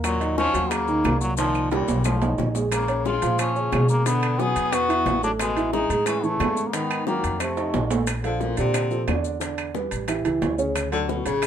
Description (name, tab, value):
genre	Afro-Cuban jazz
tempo	179 BPM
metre	4/4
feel	straight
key	unclear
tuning	A4 = 440 Hz
part	trombone with metal mute	melody	0.0-7.9 s	E#3 to G#4	-26 LUFS	left 1 dB	none
part	warm baritone saxophone	second line	0.0-11.5 s	A2 to B3	-29 LUFS	left 6 dB	none
part	dark concert grand piano	accompaniment	0.0-11.5 s	C#3 to E5	-26 LUFS	right 4 dB	none
part	upright bass	bass	0.0-11.5 s	A1 to B2	-27 LUFS	equal	none
part	bongos	percussion	0.0-11.5 s	none	-33 LUFS	left 6 dB	none
part	claves	percussion	0.0-11.5 s	none	-35 LUFS	right 5 dB	none
part	maracas	percussion	0.0-11.5 s	none	-37 LUFS	left 8 dB	none
part	timbales	percussion	0.0-11.5 s	none	-31 LUFS	right 5 dB	none
room	moderate club reverb, RT60 0.5 s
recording	minimal, uncompressed stereo recording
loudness	-21 LUFS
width	side -9 dB against mid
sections	0.0-8.1 A section; 8.1-11.5 B section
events	drum fill 1.4-2.7, 7.6-8.1; baritone saxophone solo 8.1-11.5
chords	0.0 D#m9; 1.4 Cm7; 2.0 B7#11; 2.7 A#m7; 4.1 Bm; 4.7 Esus2; 5.4 Amaj9; 6.7 G#m9; 7.4 F7; 8.1 Bbmaj9; 9.4 Em7; 10.1 A7; 10.8 Dmaj7